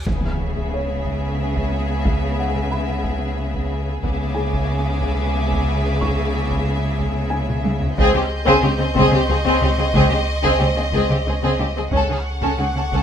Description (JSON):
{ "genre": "cinematic, suspense film score", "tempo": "91 BPM", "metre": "3/4", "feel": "straight", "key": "unclear", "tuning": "A4 = 440 Hz", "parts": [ { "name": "rich studio violin section", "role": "second line", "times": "0.0-13.0 s", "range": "G4 to A4", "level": "-25 LUFS", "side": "left 1 dB", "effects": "none" }, { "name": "pure sine sub bass", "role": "drone", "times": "0.0-13.0 s", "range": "C#2", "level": "-24 LUFS", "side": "equal", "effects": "none" }, { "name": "reverse cymbal and impact", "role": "sound effects", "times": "0.0-2.1 s", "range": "none", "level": "-28 LUFS", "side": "equal", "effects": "none" }, { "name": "felt-muted upright piano", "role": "texture", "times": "0.0-13.0 s", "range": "G#4 to C#6", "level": "-32 LUFS", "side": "left 1 dB", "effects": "none" }, { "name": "rich studio violin section", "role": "melody", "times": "0.1-13.0 s", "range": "D#5 to F#5", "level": "-29 LUFS", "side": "left 1 dB", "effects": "none" }, { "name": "warm studio viola section", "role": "accompaniment", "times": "0.1-13.0 s", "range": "B3 to C#4", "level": "-25 LUFS", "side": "left 1 dB", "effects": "none" }, { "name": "rich studio cello section", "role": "bass", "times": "0.1-13.0 s", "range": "C#3", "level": "-25 LUFS", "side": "equal", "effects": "none" }, { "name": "rich studio double bass section", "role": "bass", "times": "0.1-13.0 s", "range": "C#2", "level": "-26 LUFS", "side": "right 1 dB", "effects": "none" }, { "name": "taiko ensemble", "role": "drums", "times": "0.1-13.0 s", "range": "none", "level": "-26 LUFS", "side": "equal", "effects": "none" }, { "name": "warm studio violin section", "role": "texture", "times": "4.0-13.0 s", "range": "G#5 to G6", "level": "-34 LUFS", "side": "left 2 dB", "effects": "none" } ], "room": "moderate stone room reverb, RT60 1.1 s", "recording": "minimal, uncompressed stereo recording", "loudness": "-17 LUFS", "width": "side -8 dB against mid", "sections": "0.1-13.0 A section", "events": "impact 0.1-2.1; drum fill 7.5-8.0", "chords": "0.1 C#m7; 8.0 G#/C#; 11.9 F#m/C#" }